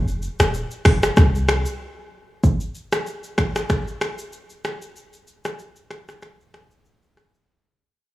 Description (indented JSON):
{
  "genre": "afrobeats",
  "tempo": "95 BPM",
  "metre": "4/4",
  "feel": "swing 55% on 16ths",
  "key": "unclear",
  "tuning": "A4 = 440 Hz",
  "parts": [
    { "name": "clean 808-style bass", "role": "bass", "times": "0.0-1.6 s", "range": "Eb1 to C2", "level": "-20 LUFS", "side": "equal", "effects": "none" },
    { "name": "afro-pop drum kit", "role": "drums", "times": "0.1-7.5 s", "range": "finger snaps, hi-hat, kick drum, rim click, shaker", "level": "-20 LUFS", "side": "equal", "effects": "none" }
  ],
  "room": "light reverb",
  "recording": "worn, warbling old tape, cassette tape, warbly pitch drift, small room ambience",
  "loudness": "-19 LUFS",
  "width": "side -17 dB against mid",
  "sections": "0.0-2.4 A section; 2.4-7.5 B section",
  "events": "break 1.8-2.4; fade-out 2.4-7.5",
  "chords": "none"
}